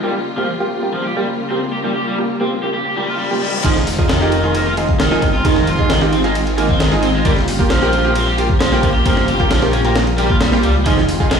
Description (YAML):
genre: breakbeat, breaks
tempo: 133 BPM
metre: 4/4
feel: straight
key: F minor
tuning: A4 = 440 Hz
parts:
  - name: warm symphonic string section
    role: sustained chords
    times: 0.0-11.4 s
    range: Db3 to F4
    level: -23 LUFS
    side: left 2 dB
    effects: vintage 12-bit sampler grit, sidechain pumping
  - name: overdriven semi-hollow guitar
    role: riff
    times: 0.0-11.4 s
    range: Eb3 to G4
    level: -20 LUFS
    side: right 1 dB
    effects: vintage 12-bit sampler grit, low-pass filter, dub echo
  - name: orchestra-hit-like synth stab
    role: stabs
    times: 0.0-11.3 s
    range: Bb3 to Ab4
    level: -20 LUFS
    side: right 2 dB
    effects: built-in reverb, dub echo
  - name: downlifter and reverse cymbal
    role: sound effects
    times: 2.9-3.6 s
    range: none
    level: -25 LUFS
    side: left 6 dB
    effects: none
  - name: phased detuned saw bass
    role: bass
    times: 3.6-11.4 s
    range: F1 to Db2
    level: -19 LUFS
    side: equal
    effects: phaser
  - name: breakbeat sampler-style drum kit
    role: drums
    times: 3.6-11.4 s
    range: crash cymbal, hi-hat, kick drum, ride cymbal, snare drum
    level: -18 LUFS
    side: equal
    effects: none
room: light reverb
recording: played on a big sound system in a bare room, stone room reverb, studio reverb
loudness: -14 LUFS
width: side -6 dB against mid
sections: 0.0-3.6 A section; 3.6-11.4 B section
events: reverse cymbal 2.9-3.6; drop 3.6-11.4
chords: 0.0 Gm7b5; 3.6 Fm7; 7.3 Gm7b5; 10.9 Fm7